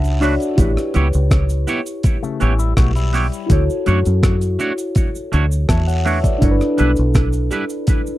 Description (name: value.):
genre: lovers rock reggae.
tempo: 82 BPM.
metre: 4/4.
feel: straight.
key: unclear.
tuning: A4 = 440 Hz.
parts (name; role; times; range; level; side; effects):
mellow tine electric piano; accompaniment; 0.0-8.2 s; D4 to B5; -22 LUFS; left 1 dB; phaser, tape echo.
deep dub fingered electric bass; bass; 0.0-7.5 s; G1 to F#2; -16 LUFS; equal; none.
breakbeat sampler-style drum kit; drums; 0.0-8.1 s; hi-hat, kick drum, rim click; -16 LUFS; equal; overdrive.
cabasa and guiro; percussion; 0.0-8.2 s; none; -36 LUFS; right 3 dB; tape echo.
twangy electric guitar; stabs; 0.2-7.6 s; G3 to C#5; -24 LUFS; right 4 dB; phaser, tape echo.
electric guitar with an envelope filter; arpeggios; 2.2-3.5 s; C#3 to F#4; -26 LUFS; left 9 dB; none.
room: little or no reverb.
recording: dry, close 1970s-style studio recording.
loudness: -14 LUFS.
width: side -15 dB against mid.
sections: 0.0-8.2 A section.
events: tine electric piano fill 0.0-0.6.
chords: 0.0 Bm7; 0.6 A9; 3.5 Dmaj7; 6.4 G6.